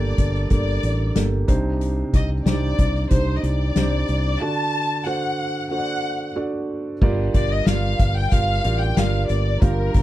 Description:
piano-driven pop; 92 BPM; 4/4; straight; G minor from 7.0 s; A4 = 440 Hz
warm studio violin section; melody; 0.0-10.0 s; Bb4 to A5; -26 LUFS; left 2 dB; slapback echo
felt-muted upright piano; accompaniment; 0.0-10.0 s; G2 to A5; -26 LUFS; right 3 dB
fingered electric bass; bass; 0.0-10.0 s; G1 to C2; -22 LUFS; equal
soft-mallet drum kit; drums; 0.2-10.0 s; crash cymbal, hi-hat, kick drum, snare drum; -20 LUFS; equal
little or no reverb; -19 LUFS; side -14 dB against mid
0.0-7.0 A section; 7.0-10.0 B section
break 4.4-7.0
0.0 Gmadd9; 1.5 Cmadd9; 4.4 D; 7.0 Gm7

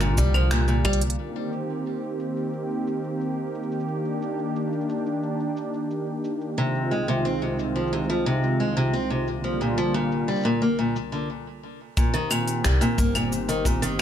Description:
folktronica; 89 BPM; 4/4; straight; C minor; A4 = 440 Hz
warm analog pad; sustained chords; 0.0-14.0 s; C2 to G4; -27 LUFS; right 1 dB; lush chorus
picked steel-string acoustic guitar; arpeggios; 0.0-1.0, 6.6-14.0 s; Bb2 to C4; -25 LUFS; equal; vintage 12-bit sampler grit, ping-pong delay
upright bass; bass; 0.0-1.1, 12.6-14.0 s; G1 to C2; -24 LUFS; equal
organic electronic drum kit; drums; 0.0-14.0 s; cabasa, claves, finger snaps, hi-hat; -30 LUFS; equal; low-pass filter on perc, low-pass filter on snare, low-pass filter on hats, low-pass filter on room
kick drum; drums; 0.2-1.0, 12.0-13.8 s; -24 LUFS; equal
light reverb; -22 LUFS; side -9 dB against mid
0.0-1.2 A section; 1.2-12.0 B section; 12.0-14.0 C section
drum fill 0.8-1.2; stop 11.3-12.0
0.0 Gm7; 1.2 Cm7; 6.6 Fm7/C; 9.3 Gm7/C; 12.0 Cm7

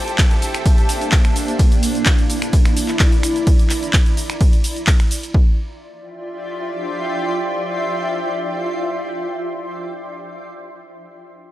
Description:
piano house; 128 BPM; 4/4; straight; D minor; A4 = 440 Hz
clear studio violin section; sustained chords; 0.0-1.6 s; A4 to A5; -28 LUFS; right 1 dB; vintage 12-bit sampler grit, sidechain pumping
granular cloud pad; texture; 0.0-9.5 s; Bb3 to C6; -23 LUFS; equal; built-in reverb, sidechain pumping
house drum kit; drums; 0.1-5.3 s; cabasa, finger snaps, handclaps, hi-hat, ride cymbal; -23 LUFS; equal
dusty soul sampler-style drum kit; drums; 0.2-3.4 s; hi-hat, snare drum, tambourine; -32 LUFS; equal
electronic kick drum; drums; 0.2-5.4 s; -14 LUFS; equal
digital ambience; dry, gritty hardware recording; -15 LUFS; side -14 dB against mid
0.0-5.3 A section; 5.3-9.1 B section
drop 0.0-5.3
0.0 Bbmaj7; 3.5 N.C.; 5.3 Dm11

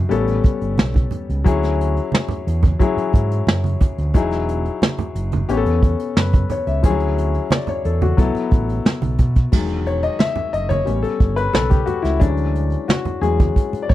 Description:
lush 1970s-style soul; 89 BPM; 4/4; straight; A4 = 438 Hz
warm grand piano; accompaniment; 0.0-13.9 s; D#3 to E5; -21 LUFS; left 6 dB
overdriven fingered electric bass; bass; 0.0-13.9 s; E1 to B2; -20 LUFS; right 1 dB
vintage brush drum kit; drums; 0.1-13.9 s; crash cymbal, hi-hat, kick drum, snare drum; -16 LUFS; right 1 dB
congas; percussion; 0.3-13.9 s; -26 LUFS; right 5 dB
little or no reverb; dry, close 1970s-style studio recording; -16 LUFS; side -14 dB against mid
0.0-9.5 A section; 9.5-13.9 B section
grand piano solo 9.5-13.9
0.1 A9; 1.5 Dmaj9#11; 4.2 Emaj9; 5.5 Aadd9; 6.8 Dmaj9#11; 8.2 B7sus4; 9.5 Emaj9; 10.9 A9; 12.2 Dmaj9#11

